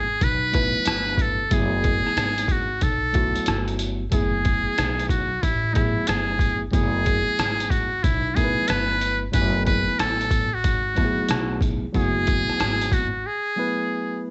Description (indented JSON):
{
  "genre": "hip hop, jazz-hop",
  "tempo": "92 BPM",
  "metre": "4/4",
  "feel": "swing 66% on 16ths",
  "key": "F# minor",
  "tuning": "A4 = 439 Hz",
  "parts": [
    { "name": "trumpet with metal mute", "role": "melody", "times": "0.0-14.2 s", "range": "D#4 to B4", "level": "-26 LUFS", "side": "equal", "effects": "cassette tape" },
    { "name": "tine electric piano", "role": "accompaniment", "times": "0.0-14.3 s", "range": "F#3 to G#5", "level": "-30 LUFS", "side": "equal", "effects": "cassette tape" },
    { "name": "upright bass", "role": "bass", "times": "0.0-13.2 s", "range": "F#1 to B1", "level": "-30 LUFS", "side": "equal", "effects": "none" },
    { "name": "trip hop sampler-style drum kit", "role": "drums", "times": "0.2-13.1 s", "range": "hi-hat, kick drum, rim click", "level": "-27 LUFS", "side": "equal", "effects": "cassette tape" }
  ],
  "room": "light reverb",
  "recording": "home recording on cassette, nothing above 8.0 kHz",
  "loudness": "-23 LUFS",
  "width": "mono",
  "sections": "0.0-14.3 A section",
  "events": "break 13.3-14.3",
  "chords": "0.0 F#m11",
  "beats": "0.21 0.86 | 1.51 2.16 2.82 3.47 | 4.12 4.77 5.42 6.08 | 6.73 7.38 8.03 8.69 | 9.34 9.99 10.64 11.29 | 11.95 12.60 13.25 13.90"
}